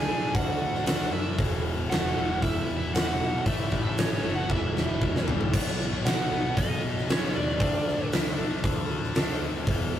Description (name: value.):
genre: hard rock.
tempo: 116 BPM.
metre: 4/4.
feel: straight.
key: unclear.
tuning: A4 = 440 Hz.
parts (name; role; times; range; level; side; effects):
smooth overdriven lead guitar; melody; 0.0-8.1 s; C#5 to G#5; -33 LUFS; right 2 dB; tape echo.
high-gain lead guitar; second line; 0.0-8.1 s; C#4 to G#4; -38 LUFS; right 3 dB; distortion.
overdriven electric guitar; riff; 0.0-5.5 s; E2 to D4; -36 LUFS; right 3 dB; none.
scooped high-gain guitar; riff; 0.0-10.0 s; E2 to D4; -32 LUFS; left 3 dB; distortion.
modern bright picked electric bass; bass; 0.0-10.0 s; E1 to F#2; -34 LUFS; equal; none.
huge arena drum kit; drums; 0.3-9.8 s; crash cymbal, hi-hat, kick drum, snare drum, toms; -27 LUFS; equal; none.
room: moderate booth ambience, RT60 0.2 s.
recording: rough rehearsal-room recording.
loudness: -24 LUFS.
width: side -10 dB against mid.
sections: 0.0-5.5 A section; 5.5-10.0 A section.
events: drum fill 4.5-5.5.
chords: 0.0 D; 1.4 E5; 3.5 A5; 4.5 E5; 5.5 B; 7.6 D5.